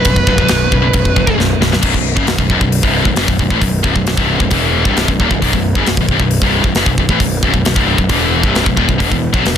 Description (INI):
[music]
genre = heavy metal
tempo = 134 BPM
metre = 4/4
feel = straight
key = unclear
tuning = A4 = 440 Hz
[part]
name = high-gain lead guitar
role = melody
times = 0.0-1.4 s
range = B4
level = -18 LUFS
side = right 1 dB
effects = distortion, ping-pong delay
[part]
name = scooped high-gain guitar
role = riff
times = 0.0-9.6 s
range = B1 to F#3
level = -15 LUFS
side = left 2 dB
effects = distortion
[part]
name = tight metal drum kit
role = drums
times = 0.0-9.6 s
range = crash cymbal, hi-hat, kick drum, snare drum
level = -16 LUFS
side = equal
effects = soft clipping on kick
[part]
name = fuzz picked electric bass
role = bass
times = 0.1-9.5 s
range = B0 to B1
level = -18 LUFS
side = equal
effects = overdrive
[sound]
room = little or no reverb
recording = dense, heavily limited modern master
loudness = -11 LUFS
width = side -9 dB against mid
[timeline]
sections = 0.0-1.8 A section; 1.8-9.6 B section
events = drum fill 1.4-1.8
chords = 0.0 B5; 9.0 E5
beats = | 0.06 0.50 0.95 1.39 | 1.84 2.29 2.73 3.18 | 3.63 4.07 4.52 4.97 | 5.42 5.87 6.31 6.76 | 7.21 7.66 8.11 8.55 | 9.00 9.45